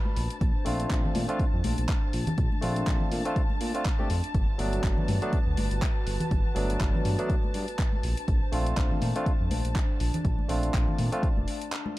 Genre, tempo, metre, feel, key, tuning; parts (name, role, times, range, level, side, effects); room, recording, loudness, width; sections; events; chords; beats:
deep house; 122 BPM; 4/4; swing 57% on 16ths; A4 = 440 Hz
dark analog pad; sustained chords; 0.0-12.0 s; D4 to B5; -38 LUFS; right 1 dB; wide subtle chorus, sidechain pumping
warm symphonic violin section; texture; 0.0-12.0 s; A5; -41 LUFS; left 4 dB
congas; percussion; 0.1-11.9 s; -35 LUFS; left 2 dB
smooth synth bass; bass; 0.2-11.5 s; F1 to Bb2; -29 LUFS; equal
deep house drum kit; drums; 0.2-12.0 s; handclaps, hi-hat; -38 LUFS; equal
electronic kick drum; drums; 0.4-11.3 s; -27 LUFS; equal
barky tine electric piano; stabs; 0.6-11.3 s; F#3 to G4; -33 LUFS; equal; sidechain pumping, ping-pong delay
digital ambience; dark, warm production; -24 LUFS; side -17 dB against mid
0.0-12.0 A section
0.2 Bbmaj9; 4.3 Gmaj9; 8.0 Bbmaj9
| 0.41 0.90 1.40 1.89 | 2.38 2.87 3.36 3.85 | 4.35 4.84 5.33 5.82 | 6.31 6.80 7.30 7.79 | 8.28 8.77 9.26 9.76 | 10.25 10.74 11.23 11.72